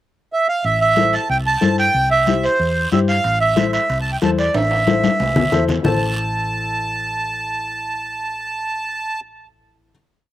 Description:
latin, cumbia; 185 BPM; 4/4; straight; A minor; A4 = 440 Hz
accordion; melody; 0.3-9.2 s; C5 to A5; -18 LUFS; right 2 dB; slapback echo
hollow-body short-scale fingered electric bass; bass; 0.6-9.9 s; A1 to G2; -23 LUFS; equal
guiro; percussion; 0.6-5.9 s; -33 LUFS; right 4 dB
dark upright piano; accompaniment; 1.0-9.9 s; E4 to C5; -24 LUFS; left 6 dB
congas; percussion; 1.0-5.9 s; -20 LUFS; left 5 dB
timbales; percussion; 3.2-5.9 s; -28 LUFS; right 4 dB
little or no reverb; recorded outdoors, with no room sound; -16 LUFS; side -13 dB against mid
0.0-0.6 pickup bar; 0.6-5.8 A section; 5.8-8.4 final chord
drum fill 4.5-5.8
0.0 N.C.; 0.6 Am; 1.9 C; 3.2 Am

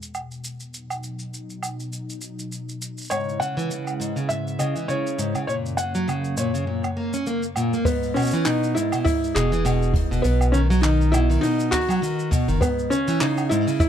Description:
folktronica; 101 BPM; 4/4; swing 56% on 16ths; B major; A4 = 439 Hz
warm analog pad; sustained chords; 0.0-7.8 s; E2 to E4; -32 LUFS; left 1 dB; chorus
jazz brush drum kit; drums; 0.0-13.9 s; handclaps, hi-hat, shaker, woodblock; -31 LUFS; right 2 dB
felt-muted upright piano; melody; 3.1-13.9 s; B3 to F#5; -25 LUFS; equal; tape echo
picked plugged-in steel-string acoustic guitar; arpeggios; 3.1-13.9 s; G#2 to C#4; -24 LUFS; equal
kick drum; drums; 7.8-13.9 s; -24 LUFS; equal
warm sub bass; bass; 9.3-12.6 s; E1 to B1; -21 LUFS; equal
studio ambience; dry, close 1970s-style studio recording; -20 LUFS; side -9 dB against mid
0.0-7.9 A section; 7.9-13.9 B section
0.0 E; 0.7 B; 3.1 C#m; 5.5 F#; 7.9 E; 10.2 B; 12.6 C#m

